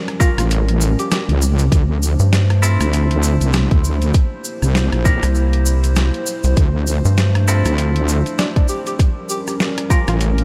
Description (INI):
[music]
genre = glitch hop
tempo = 99 BPM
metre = 4/4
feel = swing 58% on 16ths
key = D minor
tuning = A4 = 440 Hz
[part]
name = dark analog pad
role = sustained chords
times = 0.0-10.4 s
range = F3 to C5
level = -28 LUFS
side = equal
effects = subtle chorus, sidechain pumping
[part]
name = boom bap sampler-style drum kit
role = drums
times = 0.1-10.4 s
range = hi-hat, rim click, snare drum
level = -26 LUFS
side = equal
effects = none
[part]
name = breathy tenor saxophone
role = melody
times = 0.2-1.2, 8.4-10.2 s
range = D4 to G4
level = -30 LUFS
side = equal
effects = analog delay
[part]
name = semi-hollow electric guitar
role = stabs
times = 0.2-10.1 s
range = C4 to Bb4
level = -29 LUFS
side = equal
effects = vintage 12-bit sampler grit, sidechain pumping, analog delay
[part]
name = electronic kick drum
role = drums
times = 0.2-10.0 s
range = none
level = -16 LUFS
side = equal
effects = none
[part]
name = cabasa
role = percussion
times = 0.2-10.3 s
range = none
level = -30 LUFS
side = equal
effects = none
[part]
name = wobble bass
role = bass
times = 0.4-10.4 s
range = A1 to D2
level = -18 LUFS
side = equal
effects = chorus
[part]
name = rubbery square bass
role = bass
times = 2.2-7.6 s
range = C2 to G2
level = -16 LUFS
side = equal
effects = none
[sound]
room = light reverb, digital ambience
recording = none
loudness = -17 LUFS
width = mono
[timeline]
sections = 0.0-10.4 A section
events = none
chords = 0.0 A7b9b13; 1.7 Dm7; 4.1 C7; 6.6 Dm7; 9.0 A7b9b13